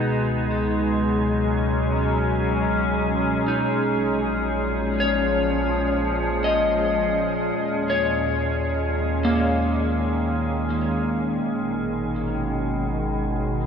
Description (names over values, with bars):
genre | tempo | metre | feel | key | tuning
ambient | 62 BPM | 4/4 | straight | Db mixolydian | A4 = 443 Hz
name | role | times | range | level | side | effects
glassy FM pad | sustained chords | 0.0-13.7 s | Bb2 to Ab4 | -22 LUFS | equal | ensemble chorus, built-in reverb
electric guitar at the edge of break-up | arpeggios | 0.0-12.9 s | Bb3 to Eb5 | -26 LUFS | left 1 dB | spring reverb, ping-pong delay
warm sub bass | bass | 0.0-13.7 s | Ab1 to Eb2 | -29 LUFS | right 1 dB | none
room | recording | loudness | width
wet huge ambient reverb, RT60 9.4 s | none | -20 LUFS | side -7 dB against mid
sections
0.0-13.7 A section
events
fade-in on clean electric guitar 0.0-13.7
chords
0.0 Db7sus4; 3.7 Bbm7; 7.6 Eb7sus4; 11.4 Abm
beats
0.79 1.76 2.73 | 3.69 4.66 5.63 6.60 | 7.56 8.53 9.50 10.47 | 11.44 12.40 13.37